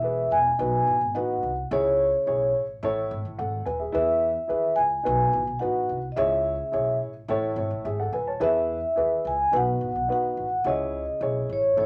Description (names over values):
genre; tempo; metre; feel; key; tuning
uptempo 1960s-style soul; 107 BPM; 4/4; straight; E major; A4 = 438 Hz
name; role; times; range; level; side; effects
vibraphone with soft mallets; melody; 0.0-11.9 s; C#5 to G#5; -26 LUFS; equal; none
dark baby grand piano; accompaniment; 0.0-11.9 s; A2 to A5; -30 LUFS; equal; none
upright bass; bass; 0.0-11.9 s; D#1 to E2; -36 LUFS; equal; none
room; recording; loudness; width
moderate club reverb, RT60 0.6 s; none; -25 LUFS; mono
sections
0.0-11.9 A section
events
none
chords
0.0 E; 0.6 B; 1.7 C#m; 2.8 A; 3.9 E; 5.1 B; 6.2 C#m; 7.3 A; 8.4 E; 9.5 B; 10.7 C#m